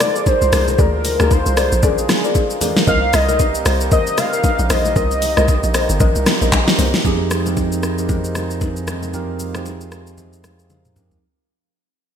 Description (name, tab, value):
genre	amapiano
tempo	115 BPM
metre	4/4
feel	swing 58% on 16ths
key	F dorian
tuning	A4 = 442 Hz
part	warm velvety synth lead	melody	0.0-6.5 s	Ab4 to F5	-20 LUFS	equal	chorus, digital delay
part	pedal harmonium	sustained chords	0.0-11.2 s	C3 to F4	-27 LUFS	right 1 dB	sidechain pumping
part	deep mellow chord stab	stabs	0.0-7.0 s	Ab4 to Eb5	-23 LUFS	left 4 dB	chorus, digital delay
part	smooth R&B drum kit	drums	0.0-11.2 s	handclaps, hi-hat, kick drum, rim click, shaker, snare drum, toms	-18 LUFS	equal	gated reverb
part	bongos and congas	percussion	0.0-11.2 s	none	-27 LUFS	left 6 dB	none
part	hollow log drum bass	bass	0.4-6.9 s	G1 to D2	-18 LUFS	equal	none
part	mellow tine electric piano	accompaniment	7.0-11.2 s	F3 to Bb4	-23 LUFS	right 5 dB	lush chorus
part	saturated sub bass	bass	7.0-11.2 s	F2	-26 LUFS	equal	none
room	light reverb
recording	bright 1980s-style digital production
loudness	-14 LUFS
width	side -8 dB against mid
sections	0.0-7.0 A section; 7.0-11.2 B section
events	drop 0.0-7.0; fade-out 7.0-11.2; drum fill 10.7-11.2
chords	0.0 Bb7; 2.9 Cm7; 7.0 Fm7